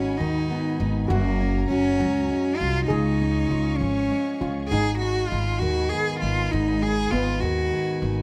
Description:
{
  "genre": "acoustic folk duo or small band",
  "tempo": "66 BPM (dotted quarters)",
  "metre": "6/8",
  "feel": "straight",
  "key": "G# dorian",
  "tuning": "A4 = 441 Hz",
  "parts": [
    { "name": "warm cello", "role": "melody", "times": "0.0-8.1 s", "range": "A#3 to G#4", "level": "-28 LUFS", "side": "equal", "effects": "none" },
    { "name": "steel pan", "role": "second line", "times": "0.0-8.2 s", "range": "B3 to G#4", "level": "-33 LUFS", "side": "equal", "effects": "none" },
    { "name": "fingerpicked steel-string acoustic guitar", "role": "accompaniment", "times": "0.0-8.2 s", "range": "F#2 to F#4", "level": "-31 LUFS", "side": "equal", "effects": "none" },
    { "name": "warm studio string section", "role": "sustained chords", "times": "0.0-8.2 s", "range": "G#4 to C#6", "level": "-43 LUFS", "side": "equal", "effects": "none" },
    { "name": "upright bass", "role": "bass", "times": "0.0-8.2 s", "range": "F#1 to D#2", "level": "-28 LUFS", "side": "equal", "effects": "none" }
  ],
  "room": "light reverb",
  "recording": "none",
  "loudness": "-24 LUFS",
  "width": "mono",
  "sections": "0.0-8.2 A section",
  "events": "none",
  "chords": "0.0 G#m7; 1.1 F#add9; 2.9 C#; 4.7 G#m7"
}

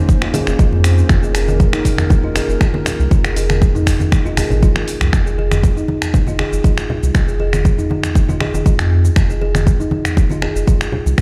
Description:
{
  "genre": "afro house",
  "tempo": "119 BPM",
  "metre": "4/4",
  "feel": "straight",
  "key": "F minor",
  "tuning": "A4 = 441 Hz",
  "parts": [
    { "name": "dark analog pad", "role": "sustained chords", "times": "0.0-5.1 s", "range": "Bb3 to C5", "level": "-28 LUFS", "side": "equal", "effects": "chorus, sidechain pumping" },
    { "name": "electronic kick drum", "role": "drums", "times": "0.1-11.2 s", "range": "none", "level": "-16 LUFS", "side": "equal", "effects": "none" },
    { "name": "house drum kit", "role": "drums", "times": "0.1-11.2 s", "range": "finger snaps, hi-hat, shaker, toms", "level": "-24 LUFS", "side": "equal", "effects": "none" },
    { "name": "kalimba", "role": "arpeggios", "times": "0.2-11.2 s", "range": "Eb4 to Ab4", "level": "-25 LUFS", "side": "equal", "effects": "vintage 12-bit sampler grit, sidechain pumping, tape echo" },
    { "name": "congas", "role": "percussion", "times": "0.3-11.2 s", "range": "none", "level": "-25 LUFS", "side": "equal", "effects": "none" },
    { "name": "warm sub bass", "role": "bass", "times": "0.5-11.2 s", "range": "F1 to F2", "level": "-19 LUFS", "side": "equal", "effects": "sidechain pumping" }
  ],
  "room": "little or no reverb",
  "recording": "played on a big sound system in a bare room, stone room reverb",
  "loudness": "-15 LUFS",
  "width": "mono",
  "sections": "0.0-5.1 A section; 5.1-11.2 B section",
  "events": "drop 0.0-5.1; drum fill 4.6-5.1",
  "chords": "0.0 Bbmadd9/F; 5.1 Fm"
}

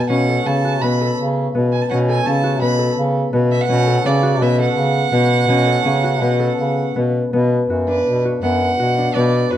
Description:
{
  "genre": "contemporary instrumental, chamber music in an uneven meter",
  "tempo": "166 BPM",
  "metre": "5/4",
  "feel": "straight",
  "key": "B minor",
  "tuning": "A4 = 438 Hz",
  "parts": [
    { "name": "warm violin", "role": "melody", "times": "0.0-9.6 s", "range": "B4 to B5", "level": "-21 LUFS", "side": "right 5 dB", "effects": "none" },
    { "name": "concert harp", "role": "arpeggios", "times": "0.0-9.6 s", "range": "B3 to A4", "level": "-19 LUFS", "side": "left 3 dB", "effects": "none" },
    { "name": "clear bass clarinet", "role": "bass", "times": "0.0-9.6 s", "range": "F#2 to C#3", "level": "-18 LUFS", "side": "right 1 dB", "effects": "none" }
  ],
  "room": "moderate recital hall reverb, RT60 1.3 s",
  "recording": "dark, warm production",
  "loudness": "-15 LUFS",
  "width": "side -11 dB against mid",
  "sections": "0.0-7.3 A section; 7.3-9.6 B section",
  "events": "none",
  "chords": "0.1 F#m/B; 7.3 Bm"
}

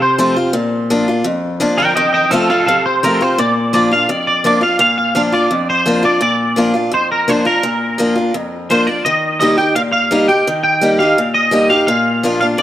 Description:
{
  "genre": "rock",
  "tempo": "170 BPM",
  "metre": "4/4",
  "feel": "straight",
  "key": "Bb major",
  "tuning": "A4 = 440 Hz",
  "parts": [
    { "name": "twangy electric guitar", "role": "melody", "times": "0.0-12.6 s", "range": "A4 to G5", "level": "-14 LUFS", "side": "right 1 dB", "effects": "ensemble chorus, tape echo" },
    { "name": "picked acoustic archtop guitar", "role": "accompaniment", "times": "0.0-12.6 s", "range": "F2 to G4", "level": "-15 LUFS", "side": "left 1 dB", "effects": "none" }
  ],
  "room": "moderate echo chamber reverb, RT60 2.7 s",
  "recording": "none",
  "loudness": "-12 LUFS",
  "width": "side -12 dB against mid",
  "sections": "0.0-3.4 A section; 3.4-12.6 B section",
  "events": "clean electric guitar solo 0.0-3.4",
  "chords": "0.0 F; 0.5 Bb; 2.0 F; 3.4 Bb; 9.0 Eb; 11.9 Bb"
}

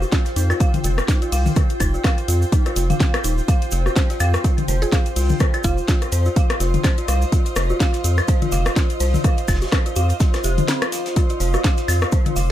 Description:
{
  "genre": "minimal techno",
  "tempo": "125 BPM",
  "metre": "4/4",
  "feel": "swing 57% on 16ths",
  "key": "unclear",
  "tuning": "A4 = 441 Hz",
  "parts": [
    { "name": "rubbery square bass", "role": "bass", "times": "0.0-12.5 s", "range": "Eb1 to F2", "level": "-19 LUFS", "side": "equal", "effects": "sidechain pumping" },
    { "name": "booming analog drum machine", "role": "percussion", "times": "0.0-12.3 s", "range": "bongos, claves, rim click, toms", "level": "-25 LUFS", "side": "left 4 dB", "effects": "none" },
    { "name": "tube shaker", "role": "percussion", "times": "0.0-12.5 s", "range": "none", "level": "-33 LUFS", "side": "right 4 dB", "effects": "none" },
    { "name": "granular cloud pad", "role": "texture", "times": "0.0-12.5 s", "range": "F4 to G5", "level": "-27 LUFS", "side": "equal", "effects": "built-in reverb, sidechain pumping" },
    { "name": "dark detuned synth bell", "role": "riff", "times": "0.1-12.4 s", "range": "C4 to F5", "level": "-28 LUFS", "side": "right 1 dB", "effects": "chorus, tremolo, sidechain pumping, dub echo" },
    { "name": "electronic kick drum", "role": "drums", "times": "0.1-12.2 s", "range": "none", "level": "-18 LUFS", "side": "equal", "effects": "overdrive" },
    { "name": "house drum kit", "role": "drums", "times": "0.1-12.5 s", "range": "hi-hat, snare drum", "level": "-27 LUFS", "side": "left 1 dB", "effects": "overdrive" },
    { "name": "warm soul drum kit", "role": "drums", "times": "0.1-12.5 s", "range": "hi-hat, snare drum", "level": "-37 LUFS", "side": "left 2 dB", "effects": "none" },
    { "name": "mallet-like synth pluck", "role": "melody", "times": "4.8-6.3 s", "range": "F4 to Ab4", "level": "-32 LUFS", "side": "right 4 dB", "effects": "chorus, dub echo" }
  ],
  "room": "light reverb",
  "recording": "none",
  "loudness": "-16 LUFS",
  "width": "side -12 dB against mid",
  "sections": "0.0-12.5 A section",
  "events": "break 10.7-11.2",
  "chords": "0.0 F5"
}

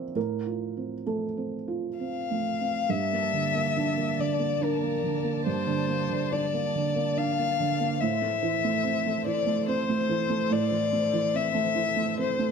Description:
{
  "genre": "neoclassical piano and strings",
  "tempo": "71 BPM",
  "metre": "3/4",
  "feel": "rubato",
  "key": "G dorian",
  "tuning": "A4 = 440 Hz",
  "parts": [
    { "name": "felt-muted upright piano", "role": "accompaniment", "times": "0.0-12.5 s", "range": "G2 to D5", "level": "-28 LUFS", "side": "right 6 dB", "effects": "none" },
    { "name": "warm violin", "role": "melody", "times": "2.0-12.5 s", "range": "Bb4 to F5", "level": "-28 LUFS", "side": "left 8 dB", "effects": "slapback echo" },
    { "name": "dark studio string section", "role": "sustained chords", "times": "2.9-12.5 s", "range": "A3 to A5", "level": "-37 LUFS", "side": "left 2 dB", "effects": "none" }
  ],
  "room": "light reverb",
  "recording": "none",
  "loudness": "-25 LUFS",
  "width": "side -6 dB against mid",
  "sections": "0.0-2.9 A section; 2.9-12.5 B section",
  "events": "none",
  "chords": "0.2 Fadd11/A; 2.9 Gmadd9; 8.0 Am"
}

